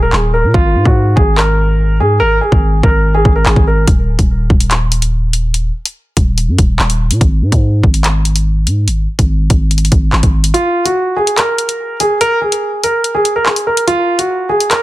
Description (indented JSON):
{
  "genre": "hip hop, drill",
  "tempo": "144 BPM",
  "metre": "4/4",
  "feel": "half-time",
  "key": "Eb minor",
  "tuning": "A4 = 439 Hz",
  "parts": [
    { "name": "dark concert grand piano", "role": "melody", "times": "0.0-3.8, 10.5-14.8 s", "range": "F4 to Bb4", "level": "-13 LUFS", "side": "right 1 dB", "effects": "ping-pong delay" },
    { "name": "growling 808-style bass", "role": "bass", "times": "0.0-10.5 s", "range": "D1 to Bb2", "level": "-13 LUFS", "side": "equal", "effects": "none" },
    { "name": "drill drum kit", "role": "drums", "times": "0.1-14.8 s", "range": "handclaps, hi-hat, kick drum", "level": "-13 LUFS", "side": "equal", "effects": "none" }
  ],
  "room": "digital ambience",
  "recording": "dense, heavily limited modern master",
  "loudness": "-10 LUFS",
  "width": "side -16 dB against mid",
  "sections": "0.0-14.8 A section",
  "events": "break 0.0-3.9; kick muted 10.5-14.8",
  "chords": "0.0 Eb5; 0.5 Absus2; 3.9 Eb5; 7.2 N.C.",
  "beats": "0.13 | 0.54 0.96 1.38 1.79 | 2.21 2.63 3.04 3.46 | 3.88 4.29 4.71 5.13 | 5.54 5.96 6.38 6.79 | 7.21 7.63 8.04 8.46 | 8.88 9.29 9.71 10.13 | 10.54 10.96 11.38 11.79 | 12.21 12.63 13.04 13.46 | 13.88 14.29 14.71"
}